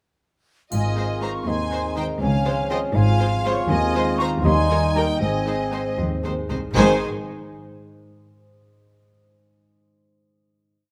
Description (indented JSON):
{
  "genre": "cinematic, playful, whimsical film cue",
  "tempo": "80 BPM (dotted quarters)",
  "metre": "6/8",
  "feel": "straight",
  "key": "Ab major",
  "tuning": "A4 = 439 Hz",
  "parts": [
    { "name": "flute section", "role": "second line", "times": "0.7-7.0 s", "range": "F5 to Db6", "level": "-31 LUFS", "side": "equal", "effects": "none" },
    { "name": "rich studio violin section", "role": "second line", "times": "0.7-7.0 s", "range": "Db5 to Bb5", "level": "-32 LUFS", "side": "equal", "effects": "none" },
    { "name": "warm bassoon", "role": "accompaniment", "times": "0.7-7.0 s", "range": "Eb3 to F4", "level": "-29 LUFS", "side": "equal", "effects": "none" },
    { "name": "mellow French horn section", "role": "sustained chords", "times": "0.7-7.0 s", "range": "Eb3 to C4", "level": "-33 LUFS", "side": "equal", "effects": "none" },
    { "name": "concert harp", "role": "arpeggios", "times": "0.7-7.0 s", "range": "Ab2 to Eb5", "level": "-33 LUFS", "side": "equal", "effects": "none" },
    { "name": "warm studio cello section", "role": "bass", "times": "0.7-7.0 s", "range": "C2 to Ab2", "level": "-28 LUFS", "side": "equal", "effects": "none" },
    { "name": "warm studio double bass section", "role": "bass", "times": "0.7-7.0 s", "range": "Ab1 to Eb2", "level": "-27 LUFS", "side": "equal", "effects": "none" },
    { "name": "triangle", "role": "percussion", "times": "0.7-1.7 s", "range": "none", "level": "-44 LUFS", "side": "equal", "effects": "none" },
    { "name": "rich studio violin section", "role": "melody", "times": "1.0-7.0 s", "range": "Bb4 to C5", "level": "-30 LUFS", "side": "equal", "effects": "none" },
    { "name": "warm studio viola section", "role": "accompaniment", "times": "1.0-7.0 s", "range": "G3 to F4", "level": "-34 LUFS", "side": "equal", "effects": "none" }
  ],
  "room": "moderate recital hall reverb, RT60 1.7 s",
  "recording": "none",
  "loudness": "-21 LUFS",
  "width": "mono",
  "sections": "0.7-6.8 A section; 6.8-8.2 final chord",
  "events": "none",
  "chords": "0.7 Ab; 2.2 Dbmaj7; 3.7 Ab/Eb; 4.4 Eb; 5.2 Ab"
}